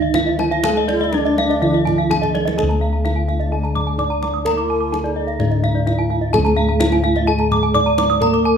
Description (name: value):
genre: Balinese gamelan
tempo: 128 BPM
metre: 4/4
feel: straight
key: D pelog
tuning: A4 = 440 Hz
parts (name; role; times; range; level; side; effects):
- gamelan-type bronze metallophone; melody; 0.0-8.6 s; D4 to D5; -21 LUFS; right 1 dB; none
- gamelan-type bronze metallophone; accompaniment; 0.0-8.6 s; D3 to Bb3-40c; -26 LUFS; right 2 dB; none
- gamelan-type bronze metallophone; arpeggios; 0.0-8.6 s; D5 to D6; -23 LUFS; left 3 dB; none
- gamelan-type bossed gongs; bass; 0.0-8.6 s; D2 to Bb4-40c; -20 LUFS; left 1 dB; none
- kendang; percussion; 0.1-8.4 s; none; -27 LUFS; left 2 dB; none
- gamelan-type bronze metallophone; arpeggios; 0.3-8.5 s; D5 to Eb6; -25 LUFS; right 5 dB; none
- mellow wooden-headed alto flute; second line; 0.9-7.4 s; D4 to F4-49c; -27 LUFS; left 1 dB; none
room: light reverb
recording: close, detailed microphones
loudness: -15 LUFS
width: side -7 dB against mid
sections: 0.0-2.6 A section; 2.6-8.6 B section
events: drum fill 2.2-2.6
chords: none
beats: 0.14 | 0.65 1.14 1.62 2.10 | 2.58 3.05 3.52 3.99 | 4.46 4.93 5.40 5.87 | 6.34 6.81 7.28 7.75 | 8.22